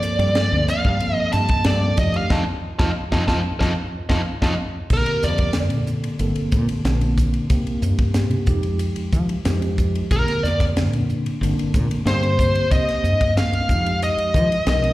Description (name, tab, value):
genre	electric jazz fusion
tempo	92 BPM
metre	4/4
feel	straight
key	Bb major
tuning	A4 = 440 Hz
part	bluesy overdriven lead guitar	melody	0.0-5.6, 10.1-14.9 s	Bb4 to A5	-22 LUFS	equal	distortion, slapback echo
part	mellow tine electric piano	accompaniment	0.0-14.9 s	D3 to Bb4	-26 LUFS	equal	medium stereo tremolo, wide subtle chorus, slapback echo
part	crisp fusion drum kit	drums	0.0-14.9 s	crash cymbal, hi-hat, kick drum, ride cymbal, snare drum	-24 LUFS	equal	none
part	woody fretless electric bass	bass	0.2-14.9 s	G1 to F3	-21 LUFS	equal	none
room	little or no reverb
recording	live gig heard through the venue's PA, recital hall reverb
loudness	-18 LUFS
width	side -17 dB against mid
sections	0.0-4.9 A section; 4.9-14.9 B section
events	drum fill 2.3-4.9; band accent 2.3-4.9; tine electric piano fill 3.0-4.9; lead electric guitar solo 4.9-14.9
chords	0.0 Gm11; 2.0 F7; 4.9 Bb69; 7.5 Cm7; 8.5 Fm9; 10.1 Bb69; 12.7 Cm7; 13.7 Fm9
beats	0.36 1.01 1.66 | 2.31 2.96 3.61 4.26 | 4.91 5.56 6.21 6.86 | 7.51 8.16 8.81 9.46 | 10.11 10.76 11.41 12.07 | 12.72 13.37 14.02 14.67